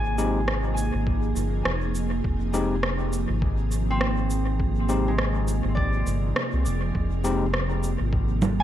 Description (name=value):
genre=ambient dub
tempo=102 BPM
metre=4/4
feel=swing 59% on 16ths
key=F dorian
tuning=A4 = 440 Hz
part: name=soft additive organ-like pad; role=sustained chords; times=0.0-8.6 s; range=C3 to Ab4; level=-30 LUFS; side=right 2 dB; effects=ensemble chorus, built-in reverb
part: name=concert harp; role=arpeggios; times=0.0-8.6 s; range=Ab3 to Ab5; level=-33 LUFS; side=left 1 dB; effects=dub echo
part: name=round analog bass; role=bass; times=0.0-8.6 s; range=F1 to C2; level=-26 LUFS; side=equal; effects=none
part: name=overdriven tine electric piano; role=stabs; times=0.2-7.5 s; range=Ab3 to G4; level=-31 LUFS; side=left 3 dB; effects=dub echo
part: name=electronic shaker, rim click and congas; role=drums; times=0.2-8.6 s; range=none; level=-29 LUFS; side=right 1 dB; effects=overdrive, dub echo
part: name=electronic kick drum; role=drums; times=1.1-8.3 s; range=none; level=-27 LUFS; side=equal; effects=none
room=light reverb, digital ambience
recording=none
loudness=-22 LUFS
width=side -11 dB against mid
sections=0.0-8.6 A section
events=none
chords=0.0 Fm7